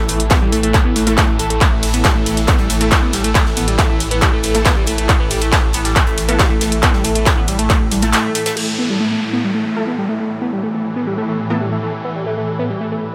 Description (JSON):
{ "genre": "driving peak-time techno", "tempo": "138 BPM", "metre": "4/4", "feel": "straight", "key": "unclear", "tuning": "A4 = 440 Hz", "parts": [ { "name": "saturated sub bass", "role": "bass", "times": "0.0-8.1 s", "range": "A1", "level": "-24 LUFS", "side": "equal", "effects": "overdrive, sidechain pumping, low-pass filter" }, { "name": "swarming drone", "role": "drone", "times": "0.0-13.1 s", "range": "A2 to E3", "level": "-28 LUFS", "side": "equal", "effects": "built-in reverb, sidechain pumping" }, { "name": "granular cloud pad", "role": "texture", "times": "0.0-13.1 s", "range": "E4 to A5", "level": "-29 LUFS", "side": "equal", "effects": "built-in reverb, sidechain pumping" }, { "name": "overdriven synth lead", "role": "riff", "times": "0.1-13.0 s", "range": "G3 to A4", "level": "-22 LUFS", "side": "equal", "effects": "phaser, sidechain pumping, tape echo" }, { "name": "modern studio drum kit", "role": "drums", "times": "0.1-8.6 s", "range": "hi-hat, snare drum", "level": "-31 LUFS", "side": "equal", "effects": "none" }, { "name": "techno drum kit", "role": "drums", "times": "0.1-8.7 s", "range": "crash cymbal, handclaps, hi-hat, ride cymbal", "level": "-21 LUFS", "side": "equal", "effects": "overdrive, sidechain pumping on hats, sidechain pumping on cymbals" }, { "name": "electronic kick drum", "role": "drums", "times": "0.3-7.8 s", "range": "none", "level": "-18 LUFS", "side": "equal", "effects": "distortion, overdrive" }, { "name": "rave stab", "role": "stabs", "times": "1.1-11.7 s", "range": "A3 to A4", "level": "-29 LUFS", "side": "equal", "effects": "none" }, { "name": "downlifter", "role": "sound effects", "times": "8.6-12.0 s", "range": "none", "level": "-31 LUFS", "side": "equal", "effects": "none" } ], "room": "light reverb", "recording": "none", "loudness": "-16 LUFS", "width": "mono", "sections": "0.0-8.6 A section; 8.6-13.1 B section", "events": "drop 0.0-8.6", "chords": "0.0 A5" }